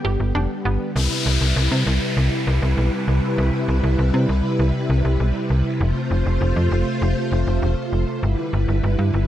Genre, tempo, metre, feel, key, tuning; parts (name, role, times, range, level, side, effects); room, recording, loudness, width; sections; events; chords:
synth-pop; 99 BPM; 4/4; straight; C major; A4 = 440 Hz
string machine, violas; sustained chords; 0.0-9.3 s; C3 to C5; -22 LUFS; equal; ensemble chorus
wide unison pluck; arpeggios; 0.0-0.9 s; B3 to G4; -30 LUFS; right 2 dB; digital delay
slap-like FM bass; bass; 0.0-9.3 s; E1 to C3; -19 LUFS; equal
downlifter; sound effects; 1.0-5.8 s; -27 LUFS; left 2 dB
light reverb, digital ambience; faint mains hum; -18 LUFS; side -12 dB against mid
1.0-9.3 A section
0.0 G; 1.0 Cmaj7; 5.8 F; 8.2 G6